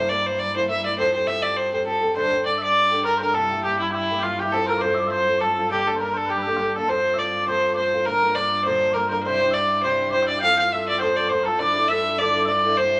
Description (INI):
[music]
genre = celtic folk, Celtic reel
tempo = 203 BPM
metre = 4/4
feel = swing 56% on 8ths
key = unclear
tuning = A4 = 441 Hz
[part]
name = rich fiddle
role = melody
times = 0.0-13.0 s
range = E4 to F5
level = -24 LUFS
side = equal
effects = none
[part]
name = picked old ladder-braced acoustic guitar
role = accompaniment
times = 0.0-13.0 s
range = G2 to Bb4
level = -31 LUFS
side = equal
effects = none
[part]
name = rich cello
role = drone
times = 0.0-13.0 s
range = G2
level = -38 LUFS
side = equal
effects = none
[part]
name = mellow small bagpipes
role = second line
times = 2.2-13.0 s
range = E4 to G5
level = -28 LUFS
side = equal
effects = none
[sound]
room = moderate large studio reverb, RT60 0.9 s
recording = none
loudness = -22 LUFS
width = mono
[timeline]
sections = 0.0-6.9 A section; 6.9-13.0 B section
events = none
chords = 0.0 C7; 1.0 Fadd9; 2.2 Gsus2; 3.3 C7; 4.5 F; 5.7 Gmadd9; 6.9 F; 8.1 Bb; 9.2 Cadd9; 10.4 F; 11.6 Dmadd9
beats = 0.09 0.39 0.69 | 0.98 1.28 1.57 1.87 | 2.16 2.46 2.75 3.05 | 3.34 3.64 3.94 4.23 | 4.53 4.82 5.12 5.41 | 5.71 6.00 6.30 6.59 | 6.89 7.18 7.48 7.78 | 8.07 8.36 8.66 8.95 | 9.25 9.54 9.84 10.13 | 10.43 10.72 11.01 11.31 | 11.60 11.90 12.19 12.48 | 12.78